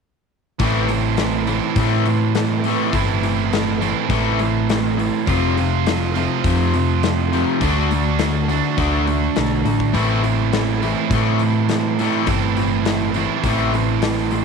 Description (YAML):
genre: classic rock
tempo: 103 BPM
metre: 4/4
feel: straight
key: A minor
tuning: A4 = 440 Hz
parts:
  - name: crunchy overdriven guitar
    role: riff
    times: 0.6-14.4 s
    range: F2 to D4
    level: -23 LUFS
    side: left 13 dB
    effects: none
  - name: distorted electric guitar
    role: riff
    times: 0.6-14.4 s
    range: A2 to F#4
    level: -20 LUFS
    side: right 12 dB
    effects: distortion
  - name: hollow-body short-scale picked electric bass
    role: bass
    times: 0.6-14.4 s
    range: F1 to A2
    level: -22 LUFS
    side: left 1 dB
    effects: none
  - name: huge arena drum kit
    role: drums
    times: 0.6-14.4 s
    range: hi-hat, kick drum, snare drum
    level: -26 LUFS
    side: left 5 dB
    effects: none
room: light reverb, small room ambience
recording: 1960s-style stereo with parts hard left and right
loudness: -16 LUFS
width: side -5 dB against mid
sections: 0.6-14.4 A section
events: none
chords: 0.6 Am; 5.3 F; 7.6 D; 9.9 Am